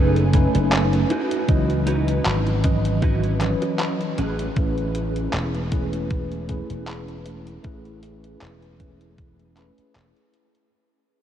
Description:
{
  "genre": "vaporwave",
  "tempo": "78 BPM",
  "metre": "4/4",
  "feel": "swing 55% on 16ths",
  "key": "A lydian",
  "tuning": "A4 = 440 Hz",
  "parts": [
    { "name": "mellow tine electric piano", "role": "accompaniment", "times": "0.0-10.7 s", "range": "E3 to G#5", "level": "-25 LUFS", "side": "equal", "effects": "medium stereo tremolo, analog chorus, analog delay" },
    { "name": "clean electric guitar", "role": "riff", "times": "0.0-4.5 s", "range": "C#4 to B4", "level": "-29 LUFS", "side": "right 3 dB", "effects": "ensemble chorus, vintage 12-bit sampler grit, analog delay" },
    { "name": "slap bass", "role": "bass", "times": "0.0-10.1 s", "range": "E1 to C#2", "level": "-23 LUFS", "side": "equal", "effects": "none" },
    { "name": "detuned 8-bit digital drum machine", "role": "drums", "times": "0.2-10.7 s", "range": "handclaps, hi-hat", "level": "-30 LUFS", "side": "equal", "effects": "overdrive" },
    { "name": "electronic kick drum", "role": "drums", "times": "0.3-9.4 s", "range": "none", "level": "-21 LUFS", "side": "equal", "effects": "none" }
  ],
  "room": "moderate huge ambient reverb, RT60 7.9 s",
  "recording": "dreamy mix soaked in reverb, cassette tape",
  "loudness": "-19 LUFS",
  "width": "side -10 dB against mid",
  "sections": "0.0-10.7 A section",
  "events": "fade-out 0.0-10.7",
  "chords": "0.0 B13; 1.1 C#m11; 4.2 Amaj9",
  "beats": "0.72 | 1.49 2.26 3.03 3.80 | 4.57 5.33 6.11 6.87 | 7.64 8.41 9.18 9.95"
}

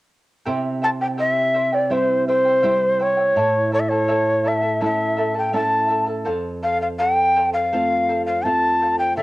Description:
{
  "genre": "andean folk, Andean ensemble",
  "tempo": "83 BPM",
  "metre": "4/4",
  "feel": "straight",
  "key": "unclear",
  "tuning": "A4 = 440 Hz",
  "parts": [
    { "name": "charango", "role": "accompaniment", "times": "0.5-9.2 s", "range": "E4 to A5", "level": "-26 LUFS", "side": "equal", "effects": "none" },
    { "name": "nylon-string guitar", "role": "accompaniment", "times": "0.5-9.2 s", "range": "F2 to F4", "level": "-26 LUFS", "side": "right 2 dB", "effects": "none" },
    { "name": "mellow large quena", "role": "melody", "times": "0.8-9.2 s", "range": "C5 to A5", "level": "-18 LUFS", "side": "equal", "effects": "cassette tape" }
  ],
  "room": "light reverb, studio ambience",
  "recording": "home recording on cassette",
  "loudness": "-17 LUFS",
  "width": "side -18 dB against mid",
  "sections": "0.5-9.2 A section",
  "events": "none",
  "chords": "0.5 C; 3.4 A; 6.3 F",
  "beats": "| 0.46 1.19 1.91 2.64 | 3.37 4.09 4.82 5.54 | 6.27 7.00 7.72 8.45 | 9.18"
}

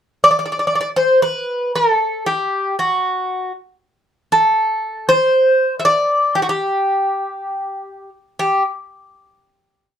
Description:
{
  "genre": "greek folk",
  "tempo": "118 BPM",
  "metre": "4/4",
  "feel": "straight",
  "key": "G major",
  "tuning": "A4 = 440 Hz",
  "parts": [
    { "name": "Greek bouzouki", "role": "solo", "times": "0.2-8.6 s", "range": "F#4 to E5", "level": "-15 LUFS", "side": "equal", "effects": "none" }
  ],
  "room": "moderate studio reverb, RT60 0.5 s",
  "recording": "none",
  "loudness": "-15 LUFS",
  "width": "side -9 dB against mid",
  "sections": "0.2-8.4 A section; 8.4-10.0 final note",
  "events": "none",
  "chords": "none",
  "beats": "| 0.23 0.74 1.25 1.76 | 2.27 2.79 3.30 3.81 | 4.32 4.83 5.33 5.84 | 6.35 6.86 7.37 7.88 | 8.38"
}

